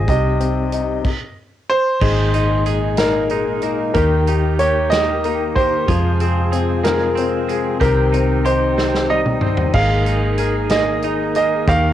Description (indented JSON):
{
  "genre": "six-eight pop ballad",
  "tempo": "62 BPM (dotted quarters)",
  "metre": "6/8",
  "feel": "straight",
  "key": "Ab major",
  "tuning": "A4 = 439 Hz",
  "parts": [
    { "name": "clear baby grand piano", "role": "melody", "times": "0.0-11.9 s", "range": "Bb4 to F5", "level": "-20 LUFS", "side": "right 1 dB", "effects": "cassette tape" },
    { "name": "bright concert grand piano", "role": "accompaniment", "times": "0.0-11.9 s", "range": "C3 to Bb4", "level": "-22 LUFS", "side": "left 9 dB", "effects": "cassette tape" },
    { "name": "mellow tonewheel organ", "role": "sustained chords", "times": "0.0-11.9 s", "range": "Bb2 to Ab4", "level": "-24 LUFS", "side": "right 1 dB", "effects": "fast rotary speaker, cassette tape" },
    { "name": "vintage muted fingered electric bass", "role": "bass", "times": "0.0-11.9 s", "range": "Ab1 to F2", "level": "-20 LUFS", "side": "equal", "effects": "none" },
    { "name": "natural country drum kit", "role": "drums", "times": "0.1-11.8 s", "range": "crash cymbal, hi-hat, kick drum, snare drum, toms", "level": "-23 LUFS", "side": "right 1 dB", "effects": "cassette tape" },
    { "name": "twelve-string electric guitar", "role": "arpeggios", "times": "2.0-11.9 s", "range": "Eb3 to Ab4", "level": "-26 LUFS", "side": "right 10 dB", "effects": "cassette tape, tape echo" }
  ],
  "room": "light reverb",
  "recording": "home recording on cassette",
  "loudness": "-15 LUFS",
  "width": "side -11 dB against mid",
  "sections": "0.0-2.0 A section; 2.0-11.9 B section",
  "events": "drum fill 8.8-9.7",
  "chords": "0.1 Cm; 2.0 Absus2; 4.0 Eb; 5.9 Fm; 7.8 Cm; 9.7 Absus2"
}